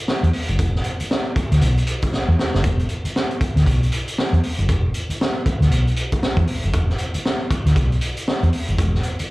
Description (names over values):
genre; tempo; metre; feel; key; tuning
funk; 117 BPM; 4/4; swing 60% on 16ths; unclear; A4 = 440 Hz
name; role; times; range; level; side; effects
crunchy breakbeat drum kit; drums; 0.1-9.3 s; hi-hat, kick drum, snare drum; -21 LUFS; equal; none
hollow-body short-scale fingered electric bass; bass; 0.2-9.2 s; E1 to E2; -18 LUFS; equal; none
room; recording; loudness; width
little or no reverb; live gig heard through the venue's PA, club reverb; -18 LUFS; side -20 dB against mid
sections
0.0-9.3 A section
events
drum fill 2.1-2.6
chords
none